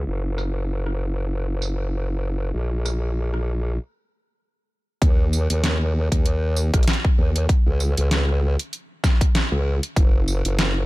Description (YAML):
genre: glitch hop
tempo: 97 BPM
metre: 4/4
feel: swing 56% on 16ths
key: Eb minor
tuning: A4 = 444 Hz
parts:
  - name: formant-sweep wobble bass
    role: bass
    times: 0.0-10.9 s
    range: Gb1 to Eb2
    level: -22 LUFS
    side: equal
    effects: chorus, overdrive
  - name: dubstep drum kit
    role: drums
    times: 0.4-10.7 s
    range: hi-hat, rim click, snare drum, tambourine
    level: -26 LUFS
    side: equal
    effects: overdrive
  - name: electronic kick drum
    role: drums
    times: 5.0-10.1 s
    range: none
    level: -18 LUFS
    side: equal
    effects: overdrive
room: little or no reverb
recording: low-pass filter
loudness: -19 LUFS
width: side -19 dB against mid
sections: 0.0-5.0 A section; 5.0-10.9 B section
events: filter sweep 0.0-5.0; stop 3.8-5.0; drop 5.0-10.9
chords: none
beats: | 0.07 0.69 1.31 1.93 | 2.54 3.16 3.78 4.40 | 5.02 5.64 6.25 6.87 | 7.49 8.11 8.73 9.35 | 9.97 10.58